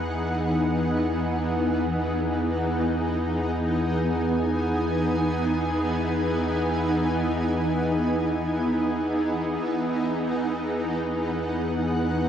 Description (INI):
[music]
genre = ambient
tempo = free time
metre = none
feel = none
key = E major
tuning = A4 = 439 Hz
[part]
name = shimmering ambient pad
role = sustained chords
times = 0.0-12.3 s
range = E3 to G#5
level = -23 LUFS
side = equal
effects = chorus, built-in reverb
[part]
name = warm sub bass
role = bass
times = 0.0-12.3 s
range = E2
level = -33 LUFS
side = equal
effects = none
[sound]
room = wet huge ambient reverb, RT60 8.6 s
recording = dark, warm production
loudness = -23 LUFS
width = side -9 dB against mid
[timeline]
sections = 0.0-12.3 A section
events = fade-in on sub bass 0.0-12.3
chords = 0.0 Emaj7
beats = free time